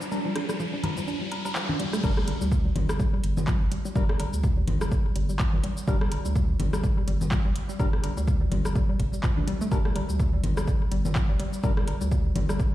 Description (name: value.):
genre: minimal techno.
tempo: 125 BPM.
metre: 4/4.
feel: swing 57% on 16ths.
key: G minor.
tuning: A4 = 436 Hz.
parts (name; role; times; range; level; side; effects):
hollow square pluck; riff; 0.0-12.5 s; F3 to D4; -32 LUFS; equal; chorus, sidechain pumping, ping-pong delay.
garage drum kit; drums; 0.0-12.7 s; cabasa, crash cymbal, handclaps, hi-hat; -38 LUFS; equal; none.
riser; sound effects; 0.0-2.0 s; none; -37 LUFS; left 1 dB; none.
percussive organ stab; stabs; 0.1-11.7 s; G3 to Bb4; -36 LUFS; left 3 dB; chorus, ping-pong delay.
electronic rim click, congas and woodblock; percussion; 0.4-12.6 s; none; -33 LUFS; left 2 dB; ping-pong delay.
saturated sub bass; bass; 2.0-12.7 s; G1 to D2; -28 LUFS; equal; sidechain pumping.
electronic kick drum; drums; 2.0-12.7 s; none; -25 LUFS; equal; overdrive.
room: light reverb, digital ambience.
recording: played on a big sound system in a bare room, large studio reverb.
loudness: -23 LUFS.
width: side -14 dB against mid.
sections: 0.0-2.0 A section; 2.0-12.7 B section.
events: build-up 0.0-2.0; riser 0.0-2.0; filter sweep on synth arpeggio sound 0.0-2.0; drop 2.0-12.7.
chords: 0.0 G5.